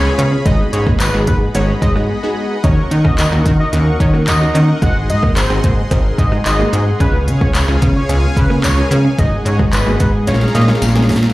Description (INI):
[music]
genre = dance-pop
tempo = 110 BPM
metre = 4/4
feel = straight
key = unclear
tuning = A4 = 438 Hz
[part]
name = fat analog lead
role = melody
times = 0.0-10.6 s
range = Cb5 to Gb5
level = -22 LUFS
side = equal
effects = chorus, sidechain pumping, digital delay
[part]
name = funky polysynth comp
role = accompaniment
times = 0.0-11.3 s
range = Ab3 to Cb5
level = -23 LUFS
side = equal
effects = chorus, sidechain pumping
[part]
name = soft supersaw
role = sustained chords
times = 0.0-11.3 s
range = Ab4 to Db6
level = -24 LUFS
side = left 1 dB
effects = sidechain pumping
[part]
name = plucky analog bass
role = bass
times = 0.0-11.3 s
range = Ab1 to Eb3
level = -14 LUFS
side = equal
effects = sidechain pumping
[part]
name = direct-recorded clean electric guitar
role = riff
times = 0.2-11.2 s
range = Ab3 to Eb4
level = -25 LUFS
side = right 3 dB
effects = ensemble chorus
[part]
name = deep house drum kit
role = drums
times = 0.2-11.3 s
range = handclaps, hi-hat, kick drum, snare drum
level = -16 LUFS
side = equal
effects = overdrive
[part]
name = tambourine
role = percussion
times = 1.0-10.9 s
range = none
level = -29 LUFS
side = left 6 dB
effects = none
[sound]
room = little or no reverb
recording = played on a big sound system in a bare room, large studio reverb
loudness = -12 LUFS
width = side -18 dB against mid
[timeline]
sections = 0.0-11.3 A section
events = break 2.1-2.6; drum fill 10.3-11.3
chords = 0.5 Abm7; 2.6 Ebm7; 4.8 Ab7; 7.0 Db7; 9.2 Abm7; 10.3 Bbm7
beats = | 0.46 1.00 1.55 2.09 | 2.64 3.18 3.73 4.28 | 4.82 5.37 5.91 6.46 | 7.00 7.55 8.09 8.64 | 9.18 9.73 10.28 10.82